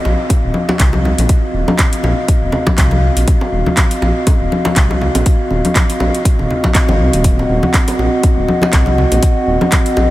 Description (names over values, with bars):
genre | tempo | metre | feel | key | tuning
afro house | 121 BPM | 4/4 | swing 56% on 16ths | Eb dorian | A4 = 439 Hz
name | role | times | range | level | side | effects
dark analog pad | sustained chords | 0.0-10.1 s | C4 to Gb5 | -18 LUFS | equal | chorus, sidechain pumping
dark detuned saw bass | bass | 0.1-10.1 s | Eb1 to C2 | -16 LUFS | equal | sidechain pumping
bongos | percussion | 0.1-10.1 s | none | -24 LUFS | right 1 dB | none
afro-pop drum kit | drums | 0.3-9.9 s | handclaps, hi-hat | -21 LUFS | equal | none
electronic kick drum | drums | 0.3-9.8 s | none | -12 LUFS | equal | none
congas | percussion | 0.5-10.1 s | none | -21 LUFS | left 2 dB | none
room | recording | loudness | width
light reverb, digital ambience | none | -11 LUFS | side -16 dB against mid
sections
0.0-10.1 A section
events
none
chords
0.0 Ebm69